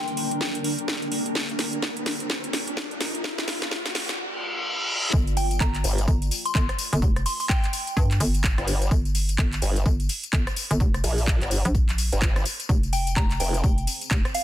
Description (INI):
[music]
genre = bass house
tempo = 127 BPM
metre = 4/4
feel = swing 60% on 16ths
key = G phrygian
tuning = A4 = 439 Hz
[part]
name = soft synth bell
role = melody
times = 0.0-0.6, 5.4-8.2, 12.9-14.4 s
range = F5 to C6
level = -31 LUFS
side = left 1 dB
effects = chorus, phaser, digital delay
[part]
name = deep dark ambient pad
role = sustained chords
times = 0.0-5.1 s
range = Bb3 to D5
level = -36 LUFS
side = left 3 dB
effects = chorus, built-in reverb, sidechain pumping
[part]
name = riser and reverse cymbal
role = sound effects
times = 0.7-5.1 s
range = none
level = -30 LUFS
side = equal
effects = none
[part]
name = granular cloud pad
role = texture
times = 0.0-4.2, 13.1-14.4 s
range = C4 to C6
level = -33 LUFS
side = right 1 dB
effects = built-in reverb, sidechain pumping
[part]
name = house drum kit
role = drums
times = 0.1-14.4 s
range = handclaps, hi-hat, rim click, snare drum, tambourine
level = -28 LUFS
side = equal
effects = none
[part]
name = electronic kick drum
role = drums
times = 0.4-14.2 s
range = none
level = -24 LUFS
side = equal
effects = high-pass filter on kick, high-pass filter on room
[part]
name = hollow knocking FM bass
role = bass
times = 5.1-14.2 s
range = F1 to G2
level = -25 LUFS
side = equal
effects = overdrive, sidechain pumping
[part]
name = formant-sweep wobble bass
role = bass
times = 5.8-13.6 s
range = F1 to Bb1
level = -23 LUFS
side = equal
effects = chorus, overdrive, sidechain pumping
[sound]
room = little or no reverb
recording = dense, heavily limited modern master, high-pass filter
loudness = -22 LUFS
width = side -13 dB against mid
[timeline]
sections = 0.0-5.1 A section; 5.1-14.4 B section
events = build-up 0.0-5.1; drum fill 0.0-4.2; riser 0.7-4.2; filter sweep on ambient pad 0.0-5.1; filter sweep 0.0-5.1; reverse cymbal 4.2-5.1; drop 5.1-14.4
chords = 0.0 Gm; 5.1 N.C.; 12.7 Fm